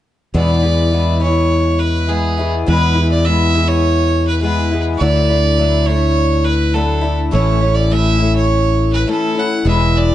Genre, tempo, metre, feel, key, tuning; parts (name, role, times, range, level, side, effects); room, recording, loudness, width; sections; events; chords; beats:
rock; 103 BPM; 4/4; straight; E mixolydian; A4 = 440 Hz
picked twelve-string acoustic guitar; accompaniment; 0.3-10.1 s; E2 to E4; -18 LUFS; left 4 dB
fingered electric bass; bass; 0.3-10.1 s; E1 to E2; -15 LUFS; right 1 dB
bright fiddle; melody; 0.4-10.1 s; G#4 to F#5; -19 LUFS; right 2 dB
light reverb, small room ambience; dark, warm production, nothing above 10.8 kHz; -12 LUFS; side -13 dB against mid
0.4-9.7 A section
break 9.1-9.7
0.4 E; 5.0 Dadd9; 7.3 A
| 0.35 0.93 1.51 2.10 | 2.68 3.26 3.84 4.42 | 5.00 5.59 6.17 6.75 | 7.33 7.91 8.49 9.07 | 9.65